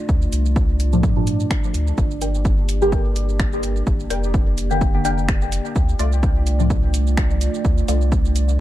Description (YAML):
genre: dub techno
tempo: 127 BPM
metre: 4/4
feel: swing 55% on 16ths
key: G minor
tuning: A4 = 445 Hz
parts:
  - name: dark analog pad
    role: sustained chords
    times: 0.0-8.6 s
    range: A3 to D5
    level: -28 LUFS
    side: right 2 dB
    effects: chorus, sidechain pumping
  - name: pure sine sub bass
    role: bass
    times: 0.1-8.6 s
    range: F1 to G2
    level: -20 LUFS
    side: equal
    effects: sidechain pumping
  - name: deep house drum kit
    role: drums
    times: 0.1-8.6 s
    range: finger snaps, hi-hat, shaker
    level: -31 LUFS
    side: right 1 dB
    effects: none
  - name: electronic kick drum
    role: drums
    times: 0.1-8.2 s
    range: none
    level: -20 LUFS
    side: equal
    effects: none
  - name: deep mellow chord stab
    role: stabs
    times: 0.9-6.9 s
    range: A2 to G4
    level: -24 LUFS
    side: left 1 dB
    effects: chorus, phaser, sidechain pumping, dub echo
  - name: filtered dub chord stab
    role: riff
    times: 2.2-8.0 s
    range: A3 to G5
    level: -29 LUFS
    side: left 3 dB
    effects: phaser, analog chorus, cassette tape, sidechain pumping, dub echo
room: little or no reverb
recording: dark, warm production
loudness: -17 LUFS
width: side -14 dB against mid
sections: 0.0-8.6 A section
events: none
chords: 0.0 Dm; 2.0 Gm; 5.8 Dm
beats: | 0.09 0.56 1.03 1.51 | 1.98 2.45 2.92 3.40 | 3.87 4.34 4.81 5.29 | 5.76 6.23 6.70 7.17 | 7.65 8.12 8.59